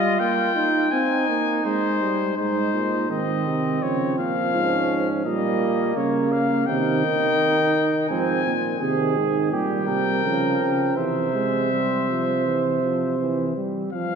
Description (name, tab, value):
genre	classical, imitative canzona for brass ensemble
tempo	83 BPM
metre	4/4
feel	straight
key	unclear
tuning	A4 = 439 Hz
part	mellow trumpet	melody	0.0-14.2 s	C5 to Ab5	-26 LUFS	left 7 dB	none
part	mellow flugelhorn	second line	0.0-13.6 s	Bb3 to C5	-26 LUFS	right 4 dB	none
part	mellow trombone	accompaniment	0.0-14.2 s	Eb3 to Eb4	-26 LUFS	right 2 dB	none
part	clear tuba	bass	2.4-13.5 s	Ab2 to Eb3	-24 LUFS	right 2 dB	none
room	wet church reverb, RT60 2.7 s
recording	none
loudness	-20 LUFS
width	side -6 dB against mid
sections	0.0-2.4 A section; 2.4-13.9 B section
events	none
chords	0.0 Eb/G; 0.9 Ab; 3.8 Db; 5.3 Gdim/Bb; 6.7 Cm; 8.1 Ab; 9.5 Gdim/Bb; 11.0 C